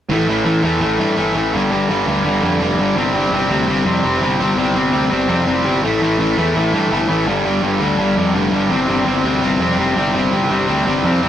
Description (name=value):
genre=punk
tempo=167 BPM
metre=4/4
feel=straight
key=unclear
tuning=A4 = 438 Hz
part: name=distorted electric guitar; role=riff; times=0.1-11.3 s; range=G2 to C4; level=-16 LUFS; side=left 2 dB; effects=distortion
part: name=distorted electric guitar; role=riff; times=0.1-11.3 s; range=G2 to C4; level=-21 LUFS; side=right 5 dB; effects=overdrive
part: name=fuzz picked electric bass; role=bass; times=0.1-11.3 s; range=F1 to G2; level=-21 LUFS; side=right 1 dB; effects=overdrive
room=moderate studio reverb, RT60 0.6 s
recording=rough rehearsal-room recording, tube saturation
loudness=-14 LUFS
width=side -10 dB against mid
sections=0.1-11.3 A section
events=none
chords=0.1 A5; 1.5 G5; 3.0 C5; 5.8 A5; 7.3 G5; 8.7 C5